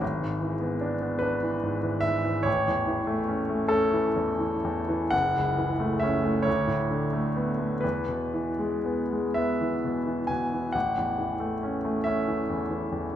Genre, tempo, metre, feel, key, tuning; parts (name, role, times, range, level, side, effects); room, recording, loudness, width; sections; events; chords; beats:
classical, romantic nocturne for solo piano; 37-50 BPM (dotted quarters); 12/8; rubato; A major; A4 = 440 Hz
bright grand piano; solo; 0.0-13.2 s; F#1 to G#5; -25 LUFS; equal
wet recital hall reverb, RT60 1.6 s; minimal, uncompressed stereo recording; -25 LUFS; side -10 dB against mid
0.0-13.2 A section
0.0 E7/G#; 2.5 A; 5.1 F#m7; 6.5 Bm7/D; 7.8 E; 10.7 A
| 0.02 1.23 2.47 3.71 | 5.12 6.46 7.83 9.37 | 10.75 12.07